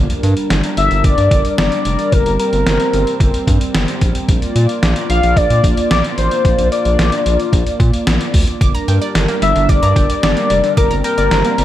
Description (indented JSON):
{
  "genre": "synth-pop",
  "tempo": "111 BPM",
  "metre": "4/4",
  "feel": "straight",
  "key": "G minor",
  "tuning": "A4 = 439 Hz",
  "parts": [
    { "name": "chorused pulse-width pad", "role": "sustained chords", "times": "0.0-11.6 s", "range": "G3 to D5", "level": "-21 LUFS", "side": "equal", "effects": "none" },
    { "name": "round analog bass", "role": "bass", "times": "0.0-11.6 s", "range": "F1 to Bb2", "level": "-16 LUFS", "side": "equal", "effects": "none" },
    { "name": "trip hop sampler-style drum kit", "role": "drums", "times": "0.1-11.6 s", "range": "hi-hat, kick drum, snare drum", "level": "-16 LUFS", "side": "equal", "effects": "gated reverb" },
    { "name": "warm velvety synth lead", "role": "melody", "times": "0.8-11.6 s", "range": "Bb4 to F5", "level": "-16 LUFS", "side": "left 2 dB", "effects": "chorus, tape echo" },
    { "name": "analog pluck", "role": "arpeggios", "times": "8.6-11.6 s", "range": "D3 to D6", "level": "-24 LUFS", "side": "right 5 dB", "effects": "chorus, tape echo" }
  ],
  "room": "light reverb",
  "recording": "none",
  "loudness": "-12 LUFS",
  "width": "side -12 dB against mid",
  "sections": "0.0-11.6 A section",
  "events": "none",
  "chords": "0.0 Gm; 4.3 Bb; 8.6 Gm"
}